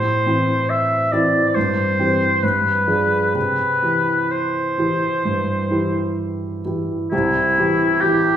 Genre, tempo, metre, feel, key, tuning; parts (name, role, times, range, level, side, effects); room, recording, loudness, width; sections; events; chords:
classical, romantic duo for oboe and grand piano; 62-70 BPM; 4/4; rubato; C major; A4 = 440 Hz
warm oboe; melody; 0.0-8.4 s; E4 to E5; -19 LUFS; left 1 dB
warm concert grand piano; accompaniment; 0.0-8.4 s; C2 to Ab4; -20 LUFS; right 1 dB
wet recital hall reverb, RT60 1.2 s; heard from further back in the room; -16 LUFS; side -10 dB against mid
0.0-7.1 A section; 7.1-8.4 A section
0.0 Am; 1.6 C/G; 2.4 G7b9; 3.4 C